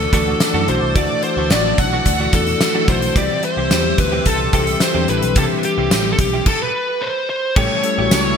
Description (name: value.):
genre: 1980s-style pop.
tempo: 109 BPM.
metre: 4/4.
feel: straight.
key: unclear.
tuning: A4 = 441 Hz.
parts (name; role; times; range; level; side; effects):
fuzz lead guitar; melody; 0.0-8.4 s; G4 to F#5; -20 LUFS; equal; distortion, ping-pong delay.
mellow tine electric piano; accompaniment; 0.0-8.4 s; E3 to A4; -23 LUFS; left 6 dB; lush chorus.
phased string machine; sustained chords; 0.0-8.4 s; G3 to E6; -26 LUFS; equal; ensemble chorus, phaser.
direct-recorded clean electric guitar; riff; 0.0-8.3 s; E3 to G4; -27 LUFS; right 4 dB; ensemble chorus, ping-pong delay.
vintage muted picked electric bass; bass; 0.0-8.3 s; A1 to F#2; -23 LUFS; right 1 dB; none.
gated 80s drum kit; drums; 0.1-8.2 s; crash cymbal, hi-hat, kick drum, snare drum, tambourine; -18 LUFS; equal; gated reverb.
tambourine; percussion; 0.4-8.2 s; none; -32 LUFS; right 10 dB; none.
room: moderate lush hall reverb, RT60 1.9 s, small room ambience.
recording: bright 1980s-style digital production.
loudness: -14 LUFS.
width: side -7 dB against mid.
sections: 0.0-7.6 A section.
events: stop 6.5-7.6.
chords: 0.0 Dadd9; 3.2 C; 7.6 A7.